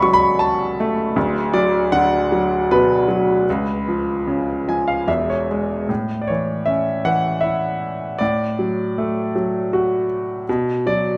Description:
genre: classical, lyrical solo piano.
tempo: 78 BPM.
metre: 3/4.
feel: rubato.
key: A major from 5.9 s.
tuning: A4 = 440 Hz.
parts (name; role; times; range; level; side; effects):
clear baby grand piano; solo; 0.0-11.2 s; D1 to C#6; -20 LUFS; equal; none.
room: moderate recital hall reverb, RT60 1.3 s.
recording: none.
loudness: -20 LUFS.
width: mono.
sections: 0.0-5.9 A section; 5.9-11.2 B section.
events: grand piano fill 4.3-5.9.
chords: 0.0 F#m/C#; 1.2 Bm/D; 3.5 C#; 5.1 E; 5.9 A; 8.2 D/A; 10.5 Bm.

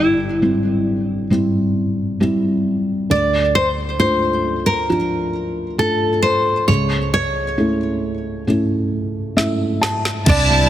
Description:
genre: pop ballad.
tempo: 67 BPM.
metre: 4/4.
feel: straight.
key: unclear.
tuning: A4 = 439 Hz.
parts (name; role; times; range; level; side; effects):
nylon-string guitar; melody; 0.0-10.7 s; D4 to D5; -18 LUFS; equal; digital delay.
felt-muted upright piano; accompaniment; 0.0-10.7 s; G1 to A5; -18 LUFS; equal; none.
smooth R&B drum kit; drums; 9.4-10.5 s; crash cymbal, kick drum, snare drum, toms; -19 LUFS; equal; none.
warm studio violin section; second line; 10.3-10.7 s; A5; -17 LUFS; right 1 dB; none.
rich studio string section; sustained chords; 10.3-10.7 s; C3 to E4; -22 LUFS; left 1 dB; none.
sub bass with octave; bass; 10.3-10.7 s; C2; -19 LUFS; equal; none.
room: moderate plate reverb, RT60 2.9 s.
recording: dense, heavily limited modern master.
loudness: -16 LUFS.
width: side -12 dB against mid.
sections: 0.0-10.3 A section.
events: felt piano fill 8.9-10.3; drum fill 9.4-10.3.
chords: 0.0 C; 3.1 Dm; 6.7 A/C#.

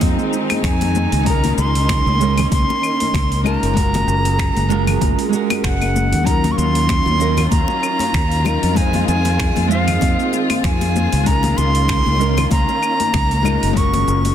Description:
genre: sunset chillout.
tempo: 96 BPM.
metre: 4/4.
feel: swing 55% on 16ths.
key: unclear.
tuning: A4 = 440 Hz.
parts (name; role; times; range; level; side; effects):
nylon-string guitar; accompaniment; 0.0-14.3 s; Gb3 to C5; -21 LUFS; moving between left 8 dB and right 9 dB; auto-pan, tape echo.
warm studio string section; sustained chords; 0.0-14.3 s; Eb3 to F4; -25 LUFS; left 1 dB; none.
fingered electric bass; bass; 0.0-14.3 s; Gb1 to F2; -19 LUFS; equal; none.
deep house drum kit; drums; 0.0-14.3 s; claves, finger snaps, hi-hat, shaker; -27 LUFS; left 1 dB; overdrive, soft clipping on snare.
electronic kick drum; drums; 0.0-13.9 s; none; -20 LUFS; equal; none.
congas; percussion; 0.0-14.3 s; none; -26 LUFS; left 5 dB; none.
silver concert flute; melody; 0.6-14.3 s; F5 to Db6; -21 LUFS; right 1 dB; tape echo.
room: light reverb, small room ambience.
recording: dense, heavily limited modern master.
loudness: -14 LUFS.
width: side -10 dB against mid.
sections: 0.0-14.3 A section.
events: none.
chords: 0.0 Fm7; 1.3 Gbmaj9; 6.3 Ebm9; 8.8 Fm7; 11.3 Gbmaj9.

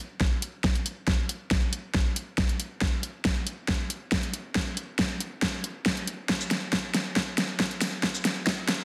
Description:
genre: dubstep.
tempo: 138 BPM.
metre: 4/4.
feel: half-time.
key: none.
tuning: none.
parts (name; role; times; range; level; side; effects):
dubstep drum kit; drums; 0.2-8.8 s; hi-hat, shaker, snare drum; -30 LUFS; equal; overdrive, studio reverb.
electronic kick drum; drums; 0.2-8.6 s; none; -31 LUFS; equal; overdrive, studio reverb.
room: moderate digital room reverb, RT60 1.1 s.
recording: dense, heavily limited modern master, high-pass filter.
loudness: -29 LUFS.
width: mono.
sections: 0.0-8.8 A section.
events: build-up 0.0-8.8; drum fill 0.0-8.8; filter sweep 0.0-8.8.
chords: none.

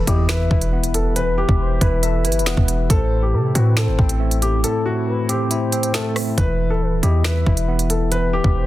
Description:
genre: hip hop, drill.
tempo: 138 BPM.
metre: 4/4.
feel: half-time.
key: E minor.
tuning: A4 = 440 Hz.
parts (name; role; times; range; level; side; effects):
dark concert grand piano; melody; 0.0-8.7 s; F#4 to B4; -25 LUFS; left 1 dB; none.
gliding portamento lead; second line; 0.0-8.7 s; A4 to E5; -30 LUFS; left 4 dB; chorus, tape echo.
tine electric piano; accompaniment; 0.0-8.7 s; A2 to E5; -24 LUFS; equal; medium stereo tremolo.
deep dark ambient pad; sustained chords; 0.0-8.7 s; E3 to B4; -31 LUFS; left 2 dB; chorus, built-in reverb.
hard-hitting 808-style bass; bass; 0.0-8.7 s; D#1 to C3; -19 LUFS; equal; none.
impact; sound effects; 0.0-1.2 s; none; -29 LUFS; equal; none.
drill drum kit; drums; 0.1-8.5 s; finger snaps, hi-hat, kick drum, rim click, snare drum; -20 LUFS; equal; none.
room: little or no reverb.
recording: dense, heavily limited modern master.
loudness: -16 LUFS.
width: side -15 dB against mid.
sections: 0.0-8.7 A section.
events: impact 0.0-1.2; break 4.6-6.4.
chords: 0.0 Em; 2.9 Am; 6.4 Em.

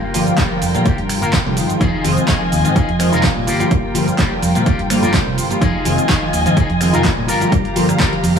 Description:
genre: filtered disco house.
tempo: 126 BPM.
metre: 4/4.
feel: swing 54% on 16ths.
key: unclear.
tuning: A4 = 440 Hz.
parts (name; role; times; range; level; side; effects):
muted chamber string section; sustained chords; 0.0-8.4 s; F4 to Bb5; -24 LUFS; left 2 dB; sidechain pumping, low-pass filter.
electric guitar with an envelope filter; riff; 0.0-8.3 s; Bb3 to C5; -24 LUFS; left 3 dB; vintage 12-bit sampler grit, sidechain pumping, low-pass filter.
funky polysynth comp; accompaniment; 0.1-8.4 s; D3 to F4; -19 LUFS; equal; chorus, phaser, sidechain pumping, low-pass filter.
fingered electric bass; bass; 0.1-8.4 s; F1 to C3; -20 LUFS; right 1 dB; sidechain pumping, low-pass filter.
punchy analog drum machine; drums; 0.1-8.4 s; finger snaps, handclaps, hi-hat, shaker; -23 LUFS; right 2 dB; overdrive, sidechain pumping on hats, sidechain pumping on perc.
electronic kick drum; drums; 0.4-8.1 s; none; -19 LUFS; equal; overdrive.
room: light reverb.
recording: none.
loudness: -13 LUFS.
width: side -7 dB against mid.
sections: 0.0-8.4 A section.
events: clean electric guitar fill 4.9-5.6.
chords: 0.0 Gm7; 1.8 Fm7; 3.5 Gm7; 5.6 Fm7; 7.3 Gm7.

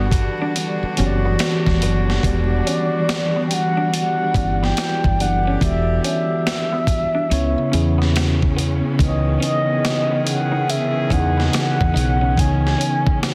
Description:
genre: R&B, neo-soul.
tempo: 71 BPM.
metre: 4/4.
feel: swing 64% on 16ths.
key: unclear.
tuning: A4 = 440 Hz.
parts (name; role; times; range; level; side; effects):
electric guitar through a small old amp; second line; 0.0-13.0 s; B3 to D#4; -32 LUFS; equal; phaser.
mellow tine electric piano; accompaniment; 0.0-13.3 s; C#3 to D#5; -25 LUFS; equal; none.
warm studio string section; sustained chords; 0.0-13.3 s; C#3 to F#5; -31 LUFS; equal; none.
warm horn section; stabs; 0.0-13.3 s; D3 to G#4; -32 LUFS; equal; none.
woody fretless electric bass; bass; 0.0-12.7 s; E1 to E2; -22 LUFS; equal; none.
boom bap sampler-style drum kit; drums; 0.1-13.3 s; hi-hat, kick drum, snare drum; -24 LUFS; equal; none.
mellow horn-like synth lead; melody; 2.3-13.3 s; D5 to G#5; -25 LUFS; equal; chorus.
room: light reverb, digital ambience.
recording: dense, heavily limited modern master, vinyl crackle.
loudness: -19 LUFS.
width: mono.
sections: 0.0-13.3 A section.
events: none.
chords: 0.0 Em9; 7.3 C#m9.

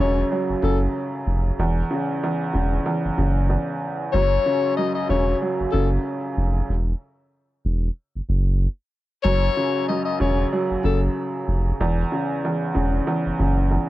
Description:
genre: hip hop, boom-bap hip-hop.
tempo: 94 BPM.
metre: 4/4.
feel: swing 58% on 16ths.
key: unclear.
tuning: A4 = 441 Hz.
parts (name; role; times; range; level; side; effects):
breathy tenor saxophone; melody; 0.0-11.0 s; A4 to D#5; -24 LUFS; left 7 dB; high-pass filter, low-pass filter, cassette tape.
warm upright piano; accompaniment; 0.0-13.9 s; E2 to F#3; -23 LUFS; right 1 dB; high-pass filter, low-pass filter, cassette tape.
saturated sub bass; bass; 0.0-13.8 s; E1 to F#1; -21 LUFS; equal; none.
room: small room ambience.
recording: home recording on cassette.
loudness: -20 LUFS.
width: side -16 dB against mid.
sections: 0.0-13.9 A section.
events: break 6.7-9.2.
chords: 0.0 F#5; 1.6 C#m/E; 4.1 F#5; 6.7 Esus2; 9.2 F#5; 11.8 C#m/E.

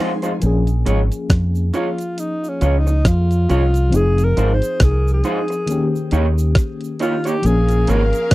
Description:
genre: lovers rock reggae.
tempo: 68 BPM.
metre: 4/4.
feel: swing 57% on 16ths.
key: Bb minor.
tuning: A4 = 440 Hz.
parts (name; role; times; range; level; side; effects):
clear studio string section; second line; 0.0-0.4, 7.4-8.3 s; Db4 to Ab5; -32 LUFS; left 2 dB; none.
FM electric piano with tremolo; accompaniment; 0.0-8.3 s; Eb3 to Ab4; -24 LUFS; left 3 dB; slapback echo.
electric guitar through a small old amp; stabs; 0.0-8.0 s; Ab3 to Db5; -22 LUFS; right 3 dB; none.
crisp 8-bit digital drum machine; drums; 0.2-8.3 s; hi-hat, kick drum, rim click; -16 LUFS; equal; overdrive.
cabasa; percussion; 0.2-8.3 s; none; -40 LUFS; right 7 dB; none.
deep dub fingered electric bass; bass; 0.4-8.3 s; F1 to F2; -16 LUFS; equal; none.
warm alto saxophone; melody; 1.8-8.3 s; Db4 to C5; -22 LUFS; equal; tape echo.
room: little or no reverb.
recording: dry, close 1970s-style studio recording.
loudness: -15 LUFS.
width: side -18 dB against mid.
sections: 0.4-8.3 A section.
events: alto saxophone solo 0.4-8.3.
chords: 0.4 Bbm7; 3.9 Fm7; 5.7 Eb7; 7.4 Bbm7.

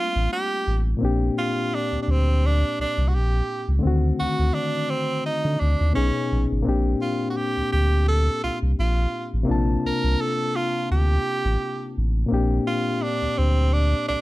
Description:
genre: R&B, neo-soul.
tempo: 85 BPM.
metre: 4/4.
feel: swing 54% on 16ths.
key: Bb major.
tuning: A4 = 440 Hz.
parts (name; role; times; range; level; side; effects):
edgy tenor saxophone; melody; 0.0-14.2 s; C4 to Bb4; -26 LUFS; right 2 dB; slapback echo.
barky reed electric piano; accompaniment; 0.0-14.2 s; Bb2 to A5; -26 LUFS; left 3 dB; overdrive.
sub bass with octave; bass; 0.2-14.2 s; G#1 to D3; -21 LUFS; equal; none.
room: little or no reverb.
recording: dry, close 1970s-style studio recording.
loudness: -20 LUFS.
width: side -18 dB against mid.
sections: 0.0-14.2 A section.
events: none.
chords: 0.0 Gm11; 1.0 Bb69; 3.8 D7b9; 5.9 B69; 6.6 Bb69; 9.5 Gm11/Bb; 12.3 Bb69.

